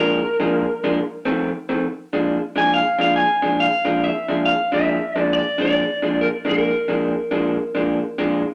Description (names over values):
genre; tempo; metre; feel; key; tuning
blues; 139 BPM; 4/4; swing 64% on 8ths; Bb mixolydian; A4 = 438 Hz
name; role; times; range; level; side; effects
electric guitar through a small old amp; melody; 0.0-8.2 s; Bb4 to Ab5; -23 LUFS; equal; spring reverb
electric guitar through a small old amp; riff; 0.0-8.4 s; F2 to D4; -23 LUFS; equal; none
room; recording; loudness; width
wet studio reverb, RT60 0.6 s; none; -20 LUFS; mono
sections
0.0-1.8 A section; 1.8-8.5 B section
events
clean electric guitar solo 0.0-1.8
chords
0.0 Bb7; 1.0 F7; 1.8 Bb7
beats
| 0.11 0.54 0.98 1.41 | 1.84 2.28 2.71 3.14 | 3.58 4.01 4.44 4.88 | 5.31 5.74 6.17 6.61 | 7.04 7.47 7.90 8.33